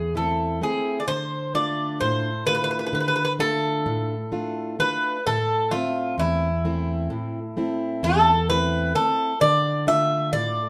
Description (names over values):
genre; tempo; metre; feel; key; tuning
greek folk; 130 BPM (eighths); 9/8; straight; unclear; A4 = 443 Hz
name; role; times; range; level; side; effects
Greek bouzouki; melody; 0.0-10.7 s; E4 to E5; -25 LUFS; equal; none
fingerpicked plugged-in steel-string acoustic guitar; accompaniment; 0.0-10.7 s; E2 to E5; -28 LUFS; equal; none
room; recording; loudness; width
moderate studio reverb, RT60 0.6 s; none; -23 LUFS; mono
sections
0.0-1.1 A section; 1.1-10.7 B section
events
none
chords
0.0 Am; 1.1 Dm; 5.3 Am; 9.4 Dm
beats
0.16 0.62 | 1.09 1.55 2.02 2.48 2.94 3.41 3.87 4.33 4.80 | 5.26 5.72 6.19 6.65 7.11 7.57 8.03 8.49 8.96 | 9.42 9.88 10.34